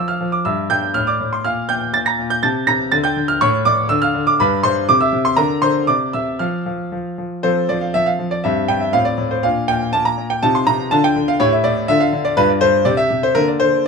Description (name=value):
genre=classical-period piano sonatina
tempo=122 BPM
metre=2/4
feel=rubato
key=F major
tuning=A4 = 440 Hz
part: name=clear grand piano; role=solo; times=0.0-13.9 s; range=G2 to Bb6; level=-15 LUFS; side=equal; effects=none
room=light reverb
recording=minimal, uncompressed stereo recording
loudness=-15 LUFS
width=side -5 dB against mid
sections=0.0-7.4 A section; 7.4-13.9 A section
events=none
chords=0.5 Em/G; 1.0 Amadd11; 1.5 Bb5; 2.4 Am/C; 2.9 Dmadd11; 3.4 A; 3.9 Dm; 4.4 G; 4.9 C; 5.4 Bb/D; 5.9 C; 6.4 N.C.; 7.4 F; 8.4 C/G; 8.9 F/A; 9.4 Bb; 10.4 F5/C; 10.9 Dmadd11; 11.4 A5; 11.9 Dm; 12.4 G5; 12.9 C; 13.4 Bb/D